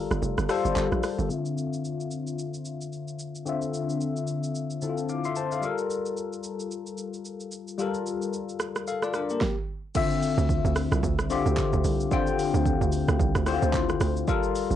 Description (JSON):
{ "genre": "amapiano", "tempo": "111 BPM", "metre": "4/4", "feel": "swing 58% on 16ths", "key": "D minor", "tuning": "A4 = 440 Hz", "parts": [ { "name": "bell-like tine electric piano", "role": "accompaniment", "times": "0.0-14.8 s", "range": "D3 to D6", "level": "-27 LUFS", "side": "left 5 dB", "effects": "phaser, low-pass filter" }, { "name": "hollow log drum bass", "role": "bass", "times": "0.0-1.3, 10.4-14.8 s", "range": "F1 to D2", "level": "-26 LUFS", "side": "right 3 dB", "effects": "none" }, { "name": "deep house drum kit", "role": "drums", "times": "0.1-14.8 s", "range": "crash cymbal, handclaps, hi-hat, kick drum, rim click, shaker, snare drum", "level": "-31 LUFS", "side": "right 3 dB", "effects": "none" } ], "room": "wet small room reverb, RT60 0.5 s", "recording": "home recording on cassette, nothing above 10.5 kHz", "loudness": "-25 LUFS", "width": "side -11 dB against mid", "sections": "0.0-1.3 A section; 1.3-10.0 B section; 10.0-14.8 A section", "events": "drop 0.0-1.3, 10.0-14.8; kick muted 0.2-1.3; filter sweep on tine electric piano 1.3-10.0", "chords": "0.0 Gm9; 1.3 Dm9; 5.6 Gm9; 10.0 Dm9" }